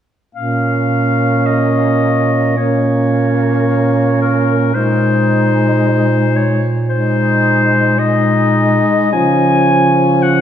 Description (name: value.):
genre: classical, lyrical piece for single-reed quartet.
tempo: 55 BPM.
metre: 4/4.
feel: rubato.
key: Bb minor.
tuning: A4 = 440 Hz.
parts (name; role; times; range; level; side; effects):
clear clarinet; melody; 0.3-10.4 s; Bb4 to Ab5; -16 LUFS; left 4 dB; none.
warm tenor saxophone; accompaniment; 0.3-10.4 s; F3 to Bb3; -18 LUFS; left 2 dB; none.
warm bass clarinet; bass; 0.3-10.4 s; Bb2 to Db3; -17 LUFS; right 2 dB; none.
clear alto saxophone; second line; 0.4-10.4 s; Db4 to Eb4; -17 LUFS; right 3 dB; none.
room: wet scoring stage reverb, RT60 2.0 s.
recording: heard from further back in the room.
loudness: -11 LUFS.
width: side -9 dB against mid.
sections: 0.3-10.4 A section.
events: none.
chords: 0.3 Bbm; 4.8 Ab/Bb; 9.1 Db.